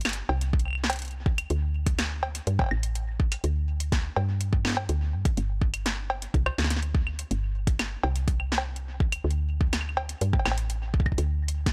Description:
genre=IDM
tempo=124 BPM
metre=4/4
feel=straight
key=unclear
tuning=A4 = 440 Hz
part: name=woody FM bass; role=bass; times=0.0-11.7 s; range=G1 to G2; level=-31 LUFS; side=equal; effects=none
part: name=electro analog drum machine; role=drums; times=0.0-11.7 s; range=claves, cowbell, hi-hat, snare drum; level=-32 LUFS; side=equal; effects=none
part: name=electronic kick drum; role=drums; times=0.5-11.7 s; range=none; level=-27 LUFS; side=equal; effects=none
room=digital ambience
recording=dry, gritty hardware recording, transformer saturation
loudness=-27 LUFS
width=mono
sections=0.0-11.7 A section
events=none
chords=none

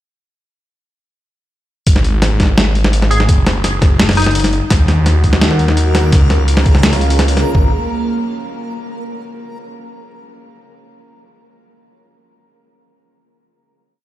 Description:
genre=half-time drum and bass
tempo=169 BPM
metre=4/4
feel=half-time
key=unclear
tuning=A4 = 441 Hz
part: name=phased detuned saw bass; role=bass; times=1.9-7.7 s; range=F#1 to D#2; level=-14 LUFS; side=equal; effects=phaser
part: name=boom bap sampler-style drum kit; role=drums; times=1.9-7.4 s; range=hi-hat, snare drum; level=-16 LUFS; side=equal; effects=small room ambience
part: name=electronic kick drum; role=drums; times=1.9-7.6 s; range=none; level=-12 LUFS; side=equal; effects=small room ambience
part: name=glassy wavetable pluck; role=melody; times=3.1-4.5 s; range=D#4 to G#4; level=-22 LUFS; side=left 2 dB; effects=chorus, cassette tape, tape echo
part: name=dark analog pad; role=sustained chords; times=5.0-7.7 s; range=C#4 to F#5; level=-23 LUFS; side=right 1 dB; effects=chorus, sidechain pumping
part: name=backwards swelling texture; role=texture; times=5.8-7.6 s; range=A#3 to A#4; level=-24 LUFS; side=equal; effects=built-in reverb
room=little or no reverb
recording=played on a big sound system in a bare room, stone room reverb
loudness=-10 LUFS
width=side -14 dB against mid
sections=1.9-7.5 drop; 7.5-9.0 final chord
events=drop 1.9-7.5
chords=1.9 N.C.; 3.3 D#m/F#; 4.7 D#m; 6.1 C#; 7.5 G#m

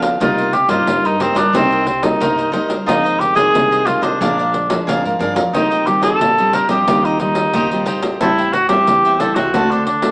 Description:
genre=samba and choro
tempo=90 BPM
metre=4/4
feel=straight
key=unclear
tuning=A4 = 442 Hz
part: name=cavaquinho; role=accompaniment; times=0.0-9.9 s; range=Eb4 to G5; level=-22 LUFS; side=right 1 dB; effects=none
part: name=nylon-string guitar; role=accompaniment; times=0.0-10.1 s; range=F2 to F#4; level=-20 LUFS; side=equal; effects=none
part: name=pandeiro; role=percussion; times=0.0-10.1 s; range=none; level=-21 LUFS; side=equal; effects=none
part: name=mellow cor anglais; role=melody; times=0.2-10.1 s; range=C4 to Bb4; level=-15 LUFS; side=equal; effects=none
part: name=upright bass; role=bass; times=0.2-10.1 s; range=A1 to Ab2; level=-27 LUFS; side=equal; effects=none
room=moderate studio reverb, RT60 0.8 s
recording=worn, warbling old tape, cassette tape, warbly pitch drift, small speaker sound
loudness=-13 LUFS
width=side -29 dB against mid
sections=0.0-10.1 A section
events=none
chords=0.2 Cm7; 2.9 Fm7; 4.2 Bb7; 5.5 Eb69; 8.2 Am7; 9.5 D7

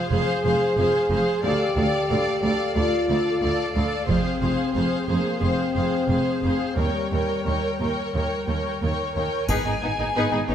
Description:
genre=cinematic, epic orchestral film score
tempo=90 BPM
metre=4/4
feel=straight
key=unclear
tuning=A4 = 440 Hz
part: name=warm symphonic violin section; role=melody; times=0.0-10.5 s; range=C#5 to G#5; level=-32 LUFS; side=left 2 dB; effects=none
part: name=warm symphonic violin section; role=second line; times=0.0-10.5 s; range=B3 to D5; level=-28 LUFS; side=left 2 dB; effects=none
part: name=warm symphonic viola section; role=accompaniment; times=0.0-10.5 s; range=B3 to Bb4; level=-30 LUFS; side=right 2 dB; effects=none
part: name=dark French horn section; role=sustained chords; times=0.1-10.5 s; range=G3 to G#4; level=-26 LUFS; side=left 2 dB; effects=none
part: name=rich symphonic cello section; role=bass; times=0.1-9.2 s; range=D2 to F2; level=-29 LUFS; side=right 2 dB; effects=none
part: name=warm symphonic double bass section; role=bass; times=0.1-10.5 s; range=F1 to Eb2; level=-28 LUFS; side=right 3 dB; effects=none
part: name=taiko ensemble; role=drums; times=4.1-5.4, 9.5-10.5 s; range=none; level=-30 LUFS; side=equal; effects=none
part: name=triangle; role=percussion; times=9.5-10.5 s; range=none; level=-37 LUFS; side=equal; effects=none
room=moderate scoring stage reverb, RT60 1.7 s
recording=none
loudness=-21 LUFS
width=side -9 dB against mid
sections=0.0-9.5 A section; 9.5-10.5 B section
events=none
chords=0.0 Fm; 1.4 Dm; 4.1 Fm; 6.8 Eb7; 9.5 G#m

